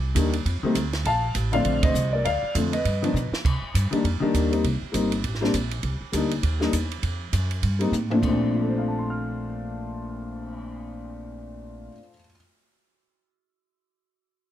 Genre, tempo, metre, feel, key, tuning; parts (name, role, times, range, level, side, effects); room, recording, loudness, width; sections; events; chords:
jazz piano trio; 201 BPM; 4/4; swing 60% on 8ths; Bb major; A4 = 440 Hz
upright bass; bass; 0.0-11.9 s; G1 to C3; -27 LUFS; right 1 dB
dark upright piano; melody; 0.1-12.4 s; Bb2 to F6; -25 LUFS; left 2 dB; plate reverb
compact cocktail drum kit; drums; 0.2-10.5 s; crash cymbal, cymbal swell, hi-hat, kick drum, ride cymbal, snare drum, toms; -29 LUFS; right 3 dB
moderate studio ambience, RT60 0.5 s; -22 LUFS; side -12 dB against mid
0.0-3.4 A section; 3.4-8.2 B section; 8.2-10.6 C section
band accent 1.8; drum fill 3.1, 7.9
0.5 F5; 1.1 Bbmaj9; 2.8 Gaug; 3.4 Cm7; 4.6 Gmadd11; 5.8 Cm7; 7.0 Fsus2; 8.2 Bbmaj9